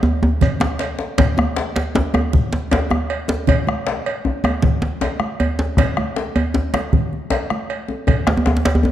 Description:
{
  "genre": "west african traditional, West African drum ensemble",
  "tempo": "104 BPM (dotted quarters)",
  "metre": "12/8",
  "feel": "straight",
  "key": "none",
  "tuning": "none",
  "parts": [
    { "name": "djembe", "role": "percussion", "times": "0.0-8.9 s", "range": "none", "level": "-19 LUFS", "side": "right 1 dB", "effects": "none" },
    { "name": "shekere", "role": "percussion", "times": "0.0-0.9 s", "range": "none", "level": "-29 LUFS", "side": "left 1 dB", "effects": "none" },
    { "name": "bombo", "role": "percussion", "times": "0.2-8.4 s", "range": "none", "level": "-20 LUFS", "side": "left 2 dB", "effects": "none" },
    { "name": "djembe", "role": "percussion", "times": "0.2-8.9 s", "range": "none", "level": "-24 LUFS", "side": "left 4 dB", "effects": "none" },
    { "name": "congas", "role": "percussion", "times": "0.4-8.5 s", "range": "none", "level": "-25 LUFS", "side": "right 5 dB", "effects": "none" },
    { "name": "cowbell", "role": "percussion", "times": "0.4-8.8 s", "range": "none", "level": "-27 LUFS", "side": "right 4 dB", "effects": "none" }
  ],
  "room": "wet recital hall reverb, RT60 1.5 s",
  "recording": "dark, warm production",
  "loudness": "-17 LUFS",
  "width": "side -12 dB against mid",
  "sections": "0.0-1.2 A section; 1.2-8.9 B section",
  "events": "drum fill 0.0-1.2",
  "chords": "none"
}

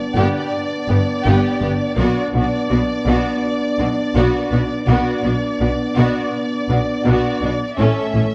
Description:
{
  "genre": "cinematic",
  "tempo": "83 BPM",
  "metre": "4/4",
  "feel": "straight",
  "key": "B minor",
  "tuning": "A4 = 436 Hz",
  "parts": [
    { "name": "rich symphonic violin section", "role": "melody", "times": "0.0-8.3 s", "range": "D5 to E5", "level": "-28 LUFS", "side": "equal", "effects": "none" },
    { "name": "mellow French horn section", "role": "sustained chords", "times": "0.0-8.3 s", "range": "A3 to D4", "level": "-25 LUFS", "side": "equal", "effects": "none" },
    { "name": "warm symphonic violin section", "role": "second line", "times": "0.2-8.2 s", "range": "F#4 to A4", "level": "-26 LUFS", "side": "equal", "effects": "none" },
    { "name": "rich symphonic viola section", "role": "accompaniment", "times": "0.2-8.2 s", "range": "B3 to C#4", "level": "-27 LUFS", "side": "equal", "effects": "none" },
    { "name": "rich symphonic cello section", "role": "bass", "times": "0.2-8.2 s", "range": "G2 to B2", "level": "-24 LUFS", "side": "equal", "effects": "none" },
    { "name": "rich symphonic double bass section", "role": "bass", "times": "0.2-8.2 s", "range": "G1 to B1", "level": "-23 LUFS", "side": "equal", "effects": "none" }
  ],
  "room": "moderate scoring stage reverb, RT60 1.6 s",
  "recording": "worn, warbling old tape, cassette tape, warbly pitch drift",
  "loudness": "-18 LUFS",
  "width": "mono",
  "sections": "0.0-8.3 A section",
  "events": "build-up 0.0-8.3",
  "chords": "0.0 G; 2.0 Bm; 7.8 A"
}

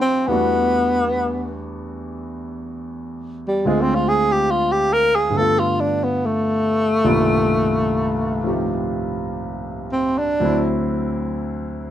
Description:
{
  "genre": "jazz ballad",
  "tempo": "71 BPM",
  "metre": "4/4",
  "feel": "swing 66% on 8ths",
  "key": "unclear",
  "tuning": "A4 = 440 Hz",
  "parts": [
    { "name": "breathy tenor saxophone", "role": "melody", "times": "0.0-10.6 s", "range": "G3 to Bb4", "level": "-18 LUFS", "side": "equal", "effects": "none" },
    { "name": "warm concert grand piano", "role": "accompaniment", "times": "0.0-11.9 s", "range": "C2 to G4", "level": "-22 LUFS", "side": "equal", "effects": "none" }
  ],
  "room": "light reverb",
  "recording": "none",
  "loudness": "-17 LUFS",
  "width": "side -11 dB against mid",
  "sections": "0.0-11.9 A section",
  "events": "tenor saxophone solo 0.0-11.9",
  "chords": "0.3 Em11; 3.6 Dm7b5; 5.3 G7; 7.0 Cm11; 10.4 D9"
}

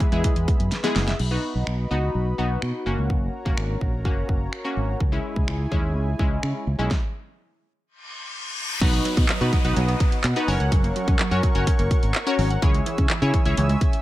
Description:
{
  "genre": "dance-pop",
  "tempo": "126 BPM",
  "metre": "4/4",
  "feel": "straight",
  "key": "B major",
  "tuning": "A4 = 440 Hz",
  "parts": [
    { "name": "funky polysynth comp", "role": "accompaniment", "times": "0.0-14.0 s", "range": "G#3 to C#5", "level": "-28 LUFS", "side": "left 2 dB", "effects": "chorus, sidechain pumping" },
    { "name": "warm analog pad", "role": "sustained chords", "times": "0.0-14.0 s", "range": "E4 to E6", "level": "-33 LUFS", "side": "equal", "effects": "chorus, sidechain pumping" },
    { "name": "tight sequenced synth", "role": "arpeggios", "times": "0.0-1.2, 8.8-13.8 s", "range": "E3 to F#5", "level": "-32 LUFS", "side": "right 3 dB", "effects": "chorus, sidechain pumping, tape echo" },
    { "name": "pop drum kit", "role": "drums", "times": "0.0-14.0 s", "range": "crash cymbal, finger snaps, handclaps, hi-hat, kick drum, snare drum", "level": "-22 LUFS", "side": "equal", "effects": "none" },
    { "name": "fingered electric bass", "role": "bass", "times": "0.1-13.7 s", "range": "F#1 to C#3", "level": "-24 LUFS", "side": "equal", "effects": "sidechain pumping" },
    { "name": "reverse cymbal and downlifter", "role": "sound effects", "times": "8.0-12.6 s", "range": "none", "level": "-32 LUFS", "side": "left 2 dB", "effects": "none" }
  ],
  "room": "little or no reverb",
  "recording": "none",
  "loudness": "-20 LUFS",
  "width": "side -15 dB against mid",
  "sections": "0.0-1.2 A section; 1.2-8.8 B section; 8.8-14.0 A section",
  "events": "drum fill 0.7-1.2; stop 6.9-8.8; reverse cymbal 8.0-8.8",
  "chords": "0.0 E; 1.2 B; 2.9 F#; 5.0 C#m; 6.9 N.C.; 8.8 B; 10.5 F#; 12.6 C#m"
}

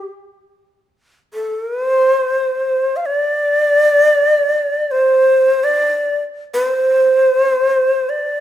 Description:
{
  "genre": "japanese traditional, Japanese chamber music",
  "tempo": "free time",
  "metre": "none",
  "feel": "none",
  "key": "unclear",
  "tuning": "A4 = 441 Hz",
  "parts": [
    { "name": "breathy bright long shakuhachi", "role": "solo", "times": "0.0-8.4 s", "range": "C5 to F5", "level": "-13 LUFS", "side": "equal", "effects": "none" }
  ],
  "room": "moderate recital hall reverb, RT60 1.4 s",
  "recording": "minimal, uncompressed stereo recording",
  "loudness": "-13 LUFS",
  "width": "side -11 dB against mid",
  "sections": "0.3-8.4 A section",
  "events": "none",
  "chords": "none"
}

